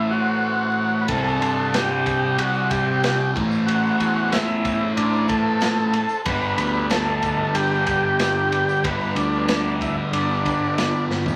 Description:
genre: psychedelic rock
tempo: 93 BPM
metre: 4/4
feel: straight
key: unclear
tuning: A4 = 441 Hz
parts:
  - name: overdriven combo organ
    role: melody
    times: 0.0-11.1 s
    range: D4 to B4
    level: -25 LUFS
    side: equal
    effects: none
  - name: mellow tonewheel organ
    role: sustained chords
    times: 0.0-11.4 s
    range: B4 to C6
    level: -37 LUFS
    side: equal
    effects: none
  - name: fuzz guitar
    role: riff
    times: 0.0-11.4 s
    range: G2 to C4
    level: -26 LUFS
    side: equal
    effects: distortion, phaser
  - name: fuzz picked electric bass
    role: bass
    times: 1.1-11.4 s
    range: G1 to C3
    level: -30 LUFS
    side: equal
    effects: overdrive
  - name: crunchy breakbeat drum kit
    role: drums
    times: 1.1-11.4 s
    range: kick drum, ride cymbal, snare drum, toms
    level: -30 LUFS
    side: equal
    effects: none
  - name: tambourine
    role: percussion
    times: 1.1-11.4 s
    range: none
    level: -50 LUFS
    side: equal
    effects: none
room: wet large studio reverb, RT60 0.9 s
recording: vinyl crackle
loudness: -21 LUFS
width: mono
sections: 0.0-11.4 A section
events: drum fill 11.1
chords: 0.0 Am; 1.1 Cadd9; 3.4 Am; 6.3 G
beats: 0.44 | 1.09 1.73 2.38 3.03 | 3.67 4.32 4.97 5.61 | 6.26 6.90 7.55 8.19 | 8.84 9.48 10.12 10.77

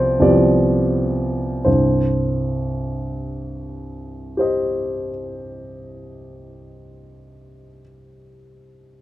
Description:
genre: classical, romantic character piece for solo piano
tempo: 44 BPM (dotted quarters)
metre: 6/8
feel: rubato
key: C minor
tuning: A4 = 440 Hz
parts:
  - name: warm grand piano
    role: solo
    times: 0.0-9.0 s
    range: C2 to Eb5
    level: -18 LUFS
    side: equal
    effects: none
room: light reverb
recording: dark, warm production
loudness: -17 LUFS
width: side -15 dB against mid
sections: 0.0-1.7 A section; 1.7-7.1 B section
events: slowing down 0.0-1.7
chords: 0.0 G7/C; 1.7 Cm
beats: 0.23 | 1.66 3.01 | 4.38 5.75

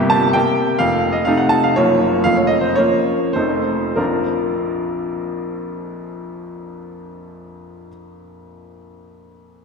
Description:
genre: classical, romantic triple-time dance for piano with dotted rhythms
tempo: 87-140 BPM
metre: 3/4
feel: rubato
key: unclear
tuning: A4 = 440 Hz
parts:
  - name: bright baby grand piano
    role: solo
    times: 0.0-9.6 s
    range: F1 to A5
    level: -16 LUFS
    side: equal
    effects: none
room: wet church reverb, RT60 2.7 s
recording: none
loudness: -15 LUFS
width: side -5 dB against mid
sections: 0.0-4.0 A section; 4.0-7.6 B section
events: slowing down 0.1-4.0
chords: 0.0 C7/G; 0.8 F7; 1.8 Gbmaj7; 2.2 Bbm/F; 3.4 F7; 4.0 Bb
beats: 0.35 | 0.80 1.26 1.76 | 2.24 2.77 3.35 | 3.99 4.58 5.18 | 5.77 6.39 7.00

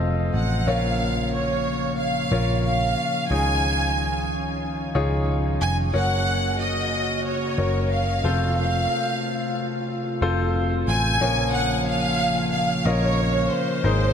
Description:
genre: piano-driven pop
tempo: 91 BPM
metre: 4/4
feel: swing 56% on 16ths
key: unclear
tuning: A4 = 440 Hz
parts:
  - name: clear concert grand piano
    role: accompaniment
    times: 0.0-14.1 s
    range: Ab2 to Eb5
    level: -27 LUFS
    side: left 3 dB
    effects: none
  - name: mellow tonewheel organ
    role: sustained chords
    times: 0.0-14.1 s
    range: C3 to Ab4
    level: -29 LUFS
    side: right 1 dB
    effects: slow rotary speaker
  - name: vintage muted picked electric bass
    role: bass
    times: 0.0-14.1 s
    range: F1 to Db2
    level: -25 LUFS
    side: equal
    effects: none
  - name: warm studio violin section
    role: melody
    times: 0.4-14.1 s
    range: C5 to Ab5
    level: -25 LUFS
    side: right 1 dB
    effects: none
room: moderate huge ambient reverb, RT60 7.3 s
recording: dreamy mix soaked in reverb, lossy compression artefacts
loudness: -20 LUFS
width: side -8 dB against mid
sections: 0.0-14.1 A section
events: none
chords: 0.0 F; 0.7 Bbm; 3.3 Dbadd9; 5.9 Gb; 8.2 F; 11.2 Bbm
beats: 0.01 | 0.67 1.33 1.99 2.65 | 3.31 3.97 4.62 5.28 | 5.94 6.60 7.26 7.92 | 8.58 9.23 9.89 10.55 | 11.21 11.87 12.53 13.19 | 13.85

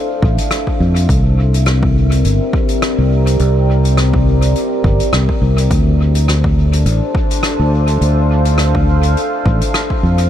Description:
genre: ambient dub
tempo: 104 BPM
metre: 4/4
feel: swing 55% on 16ths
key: D minor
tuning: A4 = 440 Hz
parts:
  - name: deep dark ambient pad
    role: sustained chords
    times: 0.0-10.3 s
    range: C4 to F5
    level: -18 LUFS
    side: left 1 dB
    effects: chorus, built-in reverb
  - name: fingered electric bass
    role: bass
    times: 0.2-10.3 s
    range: G1 to F2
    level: -12 LUFS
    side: equal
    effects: tube saturation
  - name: electronic kick drum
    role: drums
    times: 0.2-10.0 s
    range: none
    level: -18 LUFS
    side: equal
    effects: overdrive
  - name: soft-mallet drum kit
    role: drums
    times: 0.4-10.3 s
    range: hi-hat, rim click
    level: -23 LUFS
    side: left 1 dB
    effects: dub echo
room: studio ambience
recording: none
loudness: -11 LUFS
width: side -10 dB against mid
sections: 0.0-10.3 A section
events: none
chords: 0.0 Dm7; 1.1 C7; 5.7 Dm7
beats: 0.52 | 1.09 1.67 2.25 2.82 | 3.40 3.98 4.55 5.13 | 5.71 6.28 6.86 7.44 | 8.02 8.59 9.17 9.74

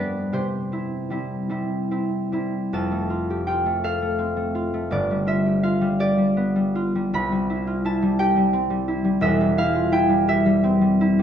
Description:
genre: classical, solo harp piece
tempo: 47-59 BPM (dotted quarters)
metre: 6/8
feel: rubato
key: C major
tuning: A4 = 438 Hz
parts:
  - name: concert harp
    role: solo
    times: 0.0-11.2 s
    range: E1 to B5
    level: -20 LUFS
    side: equal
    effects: none
room: wet recital hall reverb, RT60 1.3 s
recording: worn, warbling old tape, cassette tape, warbly pitch drift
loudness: -20 LUFS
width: side -9 dB against mid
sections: 0.0-2.7 A section; 2.7-11.2 B section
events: none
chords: 0.3 C; 2.7 F; 4.9 G7; 7.1 C; 9.2 C/E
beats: | 0.33 1.50 | 2.73 3.84 | 4.92 5.99 | 7.12 8.19 | 9.22 10.26

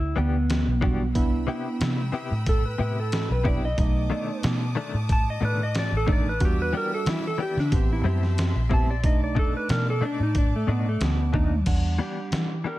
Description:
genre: straight-eighth soul blues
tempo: 91 BPM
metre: 4/4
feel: straight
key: E minor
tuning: A4 = 435 Hz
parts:
  - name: clean lap steel guitar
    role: melody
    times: 0.0-12.8 s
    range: A3 to A5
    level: -29 LUFS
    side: equal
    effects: none
  - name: vintage muted fingered electric bass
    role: bass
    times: 0.0-12.6 s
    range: A1 to E3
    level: -25 LUFS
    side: equal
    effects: none
  - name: direct-recorded clean electric guitar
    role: stabs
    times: 0.2-12.8 s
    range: A2 to G4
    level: -32 LUFS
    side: left 5 dB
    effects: tremolo
  - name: trip hop sampler-style drum kit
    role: drums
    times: 0.5-12.5 s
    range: crash cymbal, hi-hat, kick drum, snare drum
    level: -25 LUFS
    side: equal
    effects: none
  - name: bright tine electric piano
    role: accompaniment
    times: 0.8-12.5 s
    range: G3 to F#5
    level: -31 LUFS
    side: right 5 dB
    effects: none
  - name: clear studio string section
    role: sustained chords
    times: 1.1-11.6 s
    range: D5 to E6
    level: -40 LUFS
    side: equal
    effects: none
room: digital ambience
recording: none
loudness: -22 LUFS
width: side -16 dB against mid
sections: 0.0-11.7 A section; 11.7-12.8 B section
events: electric slide guitar solo 0.0-11.7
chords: 0.0 Em7; 1.2 Cmaj7; 3.8 B7#9; 6.4 Em7; 7.7 Am7; 9.0 B7#9; 11.7 Em7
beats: 0.49 | 1.15 1.81 2.46 3.12 | 3.78 4.43 5.09 5.75 | 6.41 7.06 7.72 8.38 | 9.03 9.69 10.35 11.00 | 11.66 12.32

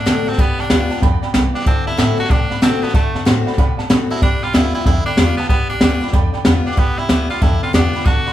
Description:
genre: rockabilly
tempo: 188 BPM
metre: 4/4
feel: swing 64% on 8ths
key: unclear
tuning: A4 = 442 Hz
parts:
  - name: raspy tenor saxophone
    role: melody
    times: 0.0-8.3 s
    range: A3 to F#4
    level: -22 LUFS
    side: equal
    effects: none
  - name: honky-tonk upright piano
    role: accompaniment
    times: 0.0-8.3 s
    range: D5 to D6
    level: -26 LUFS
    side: right 6 dB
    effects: none
  - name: picked steel-string acoustic guitar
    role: accompaniment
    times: 0.0-8.3 s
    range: A2 to F#4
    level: -25 LUFS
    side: left 5 dB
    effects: none
  - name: upright bass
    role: bass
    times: 0.1-8.3 s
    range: G1 to C3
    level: -22 LUFS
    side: equal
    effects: none
  - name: jazz brush drum kit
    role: drums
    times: 0.1-8.3 s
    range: hi-hat, kick drum, snare drum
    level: -15 LUFS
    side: equal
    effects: none
room: moderate large studio reverb, RT60 0.8 s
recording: band playing live in one room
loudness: -13 LUFS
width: side -12 dB against mid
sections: 0.0-8.3 A section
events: none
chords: 0.4 G7; 1.7 D7; 4.2 G7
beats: 0.07 | 0.39 0.70 1.02 1.34 | 1.66 1.98 2.30 2.62 | 2.94 3.26 3.58 3.90 | 4.22 4.54 4.86 5.18 | 5.50 5.82 6.14 6.46 | 6.78 7.10 7.42 7.74 | 8.06

